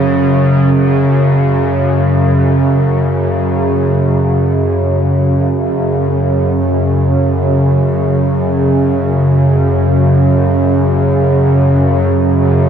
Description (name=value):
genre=ambient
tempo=free time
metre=none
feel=none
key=unclear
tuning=A4 = 436 Hz
part: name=bowed-like drone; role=solo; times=0.0-12.7 s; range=F#2 to C#3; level=-10 LUFS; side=equal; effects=built-in reverb
room=wet huge ambient reverb, RT60 7.5 s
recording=worn, warbling old tape, cassette tape, warbly pitch drift, small room ambience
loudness=-10 LUFS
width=side -8 dB against mid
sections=0.0-4.0 A section; 4.0-12.7 B section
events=none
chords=0.0 F#5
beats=free time